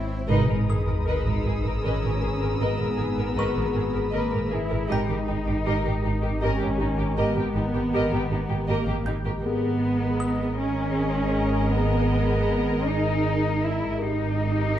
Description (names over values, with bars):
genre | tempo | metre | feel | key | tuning
cinematic | 79 BPM | 3/4 | straight | G# harmonic minor | A4 = 440 Hz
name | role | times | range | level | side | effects
muted studio viola section | accompaniment | 0.0-14.8 s | G4 to A#4 | -34 LUFS | right 2 dB | none
warbly tape-like pad | sustained chords | 0.0-14.8 s | D#4 to B5 | -36 LUFS | equal | chorus, built-in reverb
muted chamber cello section | bass | 0.0-14.8 s | A#3 to E4 | -28 LUFS | equal | none
analog drone | drone | 0.0-14.8 s | G#1 | -29 LUFS | equal | chorus
swell and sub drop | sound effects | 0.0-2.6 s | none | -28 LUFS | equal | none
muted studio violin section | melody | 0.3-14.8 s | G4 to D#5 | -36 LUFS | equal | none
muted studio violin section | second line | 0.3-14.8 s | D#4 to B4 | -34 LUFS | left 2 dB | none
mellow French horn section | sustained chords | 0.3-14.3 s | G4 to B4 | -34 LUFS | left 8 dB | none
muted studio double bass section | bass | 0.3-14.8 s | G#1 | -28 LUFS | right 3 dB | none
muted studio violin section | texture | 0.3-4.5, 14.0-14.8 s | D#6 to G6 | -41 LUFS | left 1 dB | none
music box | texture | 0.7-12.4 s | G5 to G6 | -38 LUFS | equal | none
room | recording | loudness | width
moderate recital hall reverb, RT60 1.4 s | dark, warm production | -22 LUFS | side -11 dB against mid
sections
0.3-14.8 A section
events
swell 0.0; band accent 0.3-1.1; impact 0.3-2.6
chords
0.3 G#madd9; 4.9 D#/G#; 9.4 G#madd9